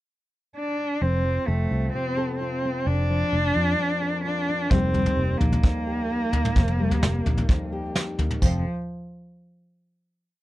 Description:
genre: indie folk with a building arrangement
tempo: 130 BPM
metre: 4/4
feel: straight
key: unclear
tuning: A4 = 440 Hz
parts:
  - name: rich cello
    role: melody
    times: 0.6-8.6 s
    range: F3 to D4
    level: -26 LUFS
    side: right 1 dB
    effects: none
  - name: fingerpicked steel-string acoustic guitar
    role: accompaniment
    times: 1.0-8.6 s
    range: F2 to Bb4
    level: -30 LUFS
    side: left 2 dB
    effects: none
  - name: picked electric bass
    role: bass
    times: 1.0-8.6 s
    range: F1 to F2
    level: -24 LUFS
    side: equal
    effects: none
  - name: vintage brush drum kit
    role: drums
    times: 4.7-8.5 s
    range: crash cymbal, kick drum, snare drum, toms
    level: -23 LUFS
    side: equal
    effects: none
room: little or no reverb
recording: none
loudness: -22 LUFS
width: side -16 dB against mid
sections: 0.0-1.0 pickup bar; 1.0-8.4 verse; 8.4-10.3 final chord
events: none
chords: 0.0 N.C.; 1.0 F; 2.9 Bb/F; 4.7 Eb/F; 8.4 N.C.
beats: 0.09 0.55 | 1.01 1.48 1.94 2.40 | 2.86 3.32 3.79 4.25 | 4.71 5.17 5.64 6.10 | 6.56 7.03 7.49 7.95 | 8.42

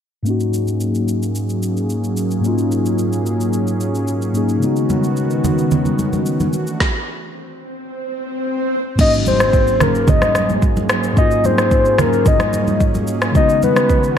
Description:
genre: amapiano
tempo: 110 BPM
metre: 4/4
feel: straight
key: unclear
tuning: A4 = 440 Hz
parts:
  - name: mellow tine electric piano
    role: accompaniment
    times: 0.2-14.2 s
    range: Ab2 to Ab4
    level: -19 LUFS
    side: left 1 dB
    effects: analog chorus, low-pass filter
  - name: warm analog pad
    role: sustained chords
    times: 0.3-14.2 s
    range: Eb3 to Ab4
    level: -23 LUFS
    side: right 1 dB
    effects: chorus, low-pass filter
  - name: deep house drum kit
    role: drums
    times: 0.3-14.2 s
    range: crash cymbal, kick drum, rim click, shaker, snare drum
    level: -18 LUFS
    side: equal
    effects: gated reverb
  - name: congas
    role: percussion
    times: 4.9-13.8 s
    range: none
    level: -21 LUFS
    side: right 2 dB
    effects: none
  - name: swell and impact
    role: sound effects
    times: 7.4-11.2 s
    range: none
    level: -25 LUFS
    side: equal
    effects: none
  - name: soft octave-layered synth lead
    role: melody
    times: 9.0-14.1 s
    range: Bb4 to Eb5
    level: -17 LUFS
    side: left 2 dB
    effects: chorus, ping-pong delay
room: moderate plate reverb, RT60 2.2 s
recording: bright 1980s-style digital production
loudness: -14 LUFS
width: side -8 dB against mid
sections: 0.3-9.0 A section; 9.0-14.2 B section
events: filter sweep 0.3-9.0; stop 6.8-9.0; swell 7.4-9.0; impact 9.0-11.2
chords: 0.3 Ab9sus4; 4.6 Db9sus4; 6.5 E9sus4; 9.0 Ab9sus4; 13.4 Db9sus4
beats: | 0.26 0.81 1.35 1.90 | 2.44 2.99 3.53 4.08 | 4.62 5.17 5.71 6.26 | 6.81 7.35 7.90 8.44 | 8.99 9.53 10.08 10.62 | 11.17 11.71 12.26 12.81 | 13.35 13.90

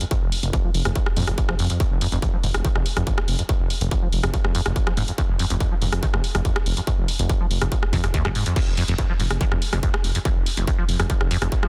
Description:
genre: driving peak-time techno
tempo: 142 BPM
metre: 4/4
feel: straight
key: F minor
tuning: A4 = 441 Hz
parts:
  - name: acid bass, saw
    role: riff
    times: 0.0-11.7 s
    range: F1 to F3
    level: -29 LUFS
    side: equal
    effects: ensemble chorus, sidechain pumping
  - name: techno drum kit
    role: drums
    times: 0.0-11.7 s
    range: crash cymbal, hi-hat, rim click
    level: -30 LUFS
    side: equal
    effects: none
  - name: electronic kick drum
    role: drums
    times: 0.1-11.6 s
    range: none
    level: -25 LUFS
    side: equal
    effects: distortion
  - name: detuned saw bass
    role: bass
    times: 0.2-11.5 s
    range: F1 to F2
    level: -28 LUFS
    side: equal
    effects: sidechain pumping
room: little or no reverb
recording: dense, heavily limited modern master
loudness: -22 LUFS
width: mono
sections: 0.0-11.7 A section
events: filter sweep on acid bass 0.0-11.7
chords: 0.0 F5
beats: | 0.11 0.53 0.96 1.38 | 1.80 2.22 2.65 3.07 | 3.49 3.92 4.34 4.76 | 5.18 5.61 6.03 6.45 | 6.87 7.29 7.72 8.14 | 8.56 8.98 9.41 9.83 | 10.25 10.68 11.10 11.52

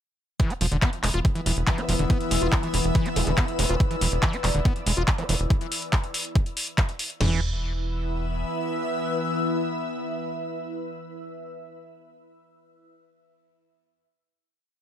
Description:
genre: psychedelic trance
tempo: 141 BPM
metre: 4/4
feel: straight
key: unclear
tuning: A4 = 440 Hz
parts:
  - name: evolving wavetable pad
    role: sustained chords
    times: 1.0-11.0 s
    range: E3 to B3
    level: -33 LUFS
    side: left 2 dB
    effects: chorus, built-in reverb, vintage 12-bit sampler grit, sidechain pumping
  - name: screaming distorted acid line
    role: riff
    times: 0.4-7.4 s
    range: D3 to F4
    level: -31 LUFS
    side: moving between left 7 dB and right 2 dB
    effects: distortion, chorus, auto-pan, sidechain pumping, ping-pong delay
  - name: techno drum kit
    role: drums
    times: 0.4-7.3 s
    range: crash cymbal, kick drum, snare drum, toms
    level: -23 LUFS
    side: equal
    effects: none
  - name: techno drum kit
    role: drums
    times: 0.4-7.2 s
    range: handclaps, hi-hat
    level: -28 LUFS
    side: left 1 dB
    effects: none
  - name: ethereal airy pad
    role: texture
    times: 1.4-11.2 s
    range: E4 to E6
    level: -31 LUFS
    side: left 1 dB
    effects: ensemble chorus, built-in reverb, phaser, sidechain pumping
  - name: tight sequencer bass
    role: bass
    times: 0.6-8.4 s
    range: E1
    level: -26 LUFS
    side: equal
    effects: none
  - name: vowel-sweep wobble bass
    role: second line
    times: 1.8-5.4 s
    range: G#3 to B3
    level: -37 LUFS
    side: right 4 dB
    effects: chorus, sidechain pumping, high-pass filter, tape echo
room: light reverb, digital ambience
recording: none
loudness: -22 LUFS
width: side -10 dB against mid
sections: 0.4-7.2 drop; 7.2-10.6 final chord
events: drop 0.4-7.2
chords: 0.4 E5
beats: | 0.40 0.82 1.25 1.67 | 2.10 2.52 2.95 3.38 | 3.80 4.23 4.65 5.08 | 5.50 5.93 6.36 6.78 | 7.21 7.63 8.06 8.48 | 8.91 9.33 9.76 10.18

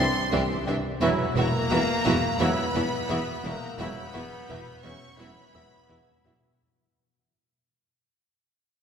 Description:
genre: cinematic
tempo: 86 BPM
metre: 4/4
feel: straight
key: unclear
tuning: A4 = 438 Hz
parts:
  - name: clear studio violin section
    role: melody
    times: 0.0-6.3 s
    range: Bb5 to C#6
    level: -33 LUFS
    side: right 1 dB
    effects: none
  - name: warm studio violin section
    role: second line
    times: 0.0-6.3 s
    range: F#4 to E5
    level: -32 LUFS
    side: left 1 dB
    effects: none
  - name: rich studio viola section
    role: accompaniment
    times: 0.0-6.3 s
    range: E3 to E4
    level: -31 LUFS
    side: equal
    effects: none
  - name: mellow French horn section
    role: sustained chords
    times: 0.0-6.3 s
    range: Bb3 to C#4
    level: -33 LUFS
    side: left 2 dB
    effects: none
  - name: rich studio cello section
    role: bass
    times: 0.0-6.3 s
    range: C2 to E2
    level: -30 LUFS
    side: right 1 dB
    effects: none
  - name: rich studio double bass section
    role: bass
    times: 0.0-6.3 s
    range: E1 to C2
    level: -32 LUFS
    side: right 1 dB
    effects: none
  - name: rich studio violin section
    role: texture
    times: 0.0-6.2 s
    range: D6 to G6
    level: -46 LUFS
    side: left 1 dB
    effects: none
  - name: warm concert grand piano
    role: texture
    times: 0.0-6.7 s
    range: C5 to A6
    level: -37 LUFS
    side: left 1 dB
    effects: none
  - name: warm trombone section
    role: sustained chords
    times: 1.0-5.4 s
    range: F#3 to E4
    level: -33 LUFS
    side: right 3 dB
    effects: none
room: wet concert hall reverb, RT60 2.5 s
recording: minimal, uncompressed stereo recording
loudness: -23 LUFS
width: side -7 dB against mid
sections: 0.0-6.6 A section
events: fade-out 0.0-6.6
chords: 0.0 Cadd9; 1.0 Esus2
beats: 0.33 | 1.02 1.72 2.41 3.10 | 3.80 4.50 5.19 5.90

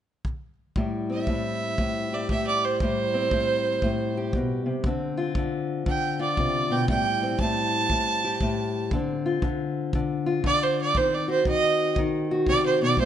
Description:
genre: acoustic country blues, solo or duo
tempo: 118 BPM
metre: 4/4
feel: swing 63% on 8ths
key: A minor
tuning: A4 = 440 Hz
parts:
  - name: kick drum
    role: drums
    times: 0.2-13.1 s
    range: none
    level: -29 LUFS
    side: equal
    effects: none
  - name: fingerpicked steel-string acoustic guitar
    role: accompaniment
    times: 0.8-13.1 s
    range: A2 to G4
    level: -26 LUFS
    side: left 2 dB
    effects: none
  - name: bright fiddle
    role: melody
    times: 1.1-13.1 s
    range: C5 to A5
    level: -25 LUFS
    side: right 4 dB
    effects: none
room: moderate recital hall reverb, RT60 1.7 s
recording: nothing above 11.0 kHz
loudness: -23 LUFS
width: side -10 dB against mid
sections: 0.8-13.1 A section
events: fiddle solo 0.8-13.1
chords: 0.0 N.C.; 0.8 Am7; 4.9 Dm7; 6.9 Am7; 8.9 Dm7; 10.9 D7b9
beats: 0.26 | 0.77 1.28 1.79 2.30 | 2.81 3.32 3.83 4.34 | 4.85 5.36 5.87 6.38 | 6.89 7.40 7.91 8.41 | 8.92 9.43 9.93 10.44 | 10.95 11.46 11.96 12.47 | 12.97

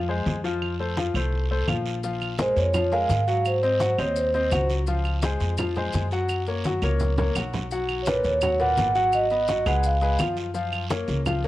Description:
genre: latin, salsa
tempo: 169 BPM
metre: 4/4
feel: straight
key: unclear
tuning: A4 = 439 Hz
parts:
  - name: bright concert grand piano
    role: accompaniment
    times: 0.0-11.5 s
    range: A#2 to Gb5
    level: -28 LUFS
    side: left 3 dB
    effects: none
  - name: upright bass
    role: bass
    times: 0.0-11.5 s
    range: Ab1 to Ab2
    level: -27 LUFS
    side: equal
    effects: none
  - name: congas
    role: percussion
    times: 0.1-11.5 s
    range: none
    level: -31 LUFS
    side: equal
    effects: none
  - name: guiro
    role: percussion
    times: 0.3-11.5 s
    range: none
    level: -40 LUFS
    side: right 7 dB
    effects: none
  - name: claves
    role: percussion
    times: 0.6-11.4 s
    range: none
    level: -33 LUFS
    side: right 6 dB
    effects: none
  - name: maracas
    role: percussion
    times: 2.0-11.5 s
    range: none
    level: -43 LUFS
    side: left 7 dB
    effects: none
  - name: vibraphone with soft mallets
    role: melody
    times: 2.4-4.7, 8.0-10.3 s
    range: B4 to F#5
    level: -23 LUFS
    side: right 2 dB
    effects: cassette tape
room: small room ambience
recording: home recording on cassette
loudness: -22 LUFS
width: side -15 dB against mid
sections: 0.0-11.5 A section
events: drum fill 6.6-7.7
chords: 0.0 Dbmaj7 (rootless); 0.6 F; 2.0 Bbm7; 3.5 Ab7; 4.9 Dbmaj7; 6.3 Gb; 7.7 Bmaj9; 9.1 Abm7; 9.8 Db7; 10.6 Gbmaj7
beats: 0.26 | 0.62 0.97 1.32 1.68 | 2.03 2.39 2.74 3.10 | 3.45 3.81 4.16 4.52 | 4.87 5.23 5.58 5.94 | 6.29 6.65 7.00 7.36 | 7.71 8.07 8.42 8.78 | 9.13 9.49 9.84 10.20 | 10.55 10.91 11.26

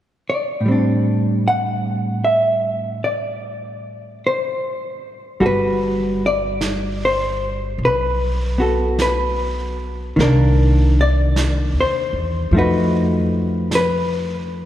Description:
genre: jazz ballad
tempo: 50 BPM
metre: 4/4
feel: swing 67% on 8ths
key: G major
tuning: A4 = 440 Hz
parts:
  - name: hollow-body jazz guitar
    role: accompaniment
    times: 0.3-14.7 s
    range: A2 to F#5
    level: -18 LUFS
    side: equal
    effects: none
  - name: upright bass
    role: bass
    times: 5.4-14.7 s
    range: G1 to F2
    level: -19 LUFS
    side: equal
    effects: none
  - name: vintage brush drum kit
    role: drums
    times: 5.4-14.7 s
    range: brushed snare drum, hi-hat, snare drum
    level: -29 LUFS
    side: right 2 dB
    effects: none
room: moderate church reverb, RT60 3.3 s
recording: recorded in a church or concert hall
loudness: -16 LUFS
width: side -12 dB against mid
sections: 0.6-5.4 A section; 5.4-14.7 B section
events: none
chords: 0.0 N.C.; 0.6 Am7; 5.4 Gmaj7; 10.2 Cm9; 12.5 F7b9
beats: | 0.65 1.84 3.02 4.21 | 5.41 6.61 7.79 8.98 | 10.17 11.35 12.53 13.71

